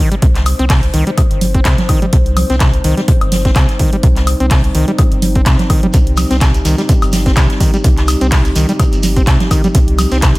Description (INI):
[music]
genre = acid house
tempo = 126 BPM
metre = 4/4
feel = swing 55% on 16ths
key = C minor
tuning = A4 = 440 Hz
[part]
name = dark analog pad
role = sustained chords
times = 0.0-10.4 s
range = G3 to C5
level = -21 LUFS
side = left 1 dB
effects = chorus, sidechain pumping
[part]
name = overdriven acid bass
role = riff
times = 0.0-10.3 s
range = C3 to C4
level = -18 LUFS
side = equal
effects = distortion, cassette tape, tape echo
[part]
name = punchy analog drum machine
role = drums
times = 0.1-10.4 s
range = congas, handclaps, hi-hat, woodblock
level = -19 LUFS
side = right 1 dB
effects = none
[part]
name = saturated sub bass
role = bass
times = 0.2-10.4 s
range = G1 to C2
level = -16 LUFS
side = equal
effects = sidechain pumping
[part]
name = electronic kick drum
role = drums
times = 0.2-10.3 s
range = none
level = -12 LUFS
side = equal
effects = none
[part]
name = open jazz drum kit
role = drums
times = 0.2-10.3 s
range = hi-hat, snare drum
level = -28 LUFS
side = left 3 dB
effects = sidechain pumping on hats, high-pass filter on hats, high-pass filter on snare, high-pass filter on room
[part]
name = shekere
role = percussion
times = 5.9-10.4 s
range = none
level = -27 LUFS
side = right 2 dB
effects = none
[sound]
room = studio reverb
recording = none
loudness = -10 LUFS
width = side -20 dB against mid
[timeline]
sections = 0.0-10.4 A section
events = none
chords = 0.0 Cm